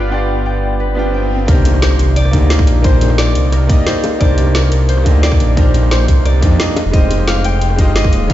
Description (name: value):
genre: liquid drum and bass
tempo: 176 BPM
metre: 4/4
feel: straight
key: C minor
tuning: A4 = 440 Hz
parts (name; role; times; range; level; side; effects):
- clear baby grand piano; accompaniment; 0.0-8.3 s; Ab3 to G5; -19 LUFS; right 1 dB; ping-pong delay
- lush unison pad; sustained chords; 0.0-1.5 s; F4 to D5; -26 LUFS; equal; chorus, sidechain pumping
- concert harp; arpeggios; 0.0-8.3 s; Bb4 to G5; -22 LUFS; left 3 dB; tape echo
- swelling detuned saw bass; bass; 0.0-8.3 s; Eb1 to F2; -13 LUFS; equal; none
- swell and impact; sound effects; 0.9-2.8 s; none; -23 LUFS; equal; none
- drum and bass drum kit; drums; 1.5-8.3 s; hi-hat, rim click, snare drum; -21 LUFS; equal; none
- electronic kick drum; drums; 1.5-8.3 s; none; -12 LUFS; equal; none
- bongos; percussion; 1.7-7.2 s; none; -24 LUFS; left 3 dB; none
room: digital ambience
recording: played on a big sound system in a bare room, stone room reverb, nothing above 7.8 kHz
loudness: -10 LUFS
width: side -13 dB against mid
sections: 0.0-1.5 A section; 1.5-8.3 B section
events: filter sweep on analog synth pad 0.0-1.5; swell 0.9-1.5; drop 1.5-8.3; impact 1.5-2.8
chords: 0.0 G7; 1.5 Cm9; 6.8 Fm9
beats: | 0.12 0.46 0.80 1.14 | 1.48 1.82 2.16 2.50 | 2.84 3.19 3.53 3.87 | 4.21 4.55 4.89 5.23 | 5.57 5.91 6.25 6.59 | 6.93 7.28 7.62 7.96 | 8.30